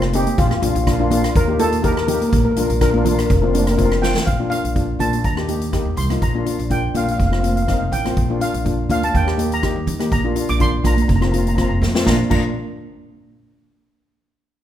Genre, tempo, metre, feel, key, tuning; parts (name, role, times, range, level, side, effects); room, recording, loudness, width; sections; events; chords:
calypso; 123 BPM; 4/4; swing 53% on 16ths; Bb major; A4 = 440 Hz
steel pan; accompaniment; 0.0-12.5 s; Bb3 to G4; -22 LUFS; left 3 dB
upright bass; bass; 0.0-12.5 s; F1 to Eb3; -21 LUFS; equal
street-band drum kit; drums; 0.0-12.4 s; crash cymbal, hi-hat, kick drum, rim click, snare drum; -22 LUFS; equal
steel pan; melody; 0.2-12.5 s; F4 to D6; -23 LUFS; left 1 dB
congas; percussion; 0.3-12.5 s; -25 LUFS; right 4 dB
light reverb; minimal, uncompressed stereo recording; -16 LUFS; side -11 dB against mid
0.0-4.3 A section; 4.3-12.1 B section; 12.1-14.0 C section
drum fill 3.8-4.3, 11.8
0.4 Bb; 1.4 Eb; 2.3 Bb; 3.3 Fsus4; 4.3 Bb; 5.2 Eb; 6.2 Bb; 7.2 Fsus4; 8.2 Bb; 9.1 Eb; 10.1 Bb; 11.1 Fsus4; 12.1 Bb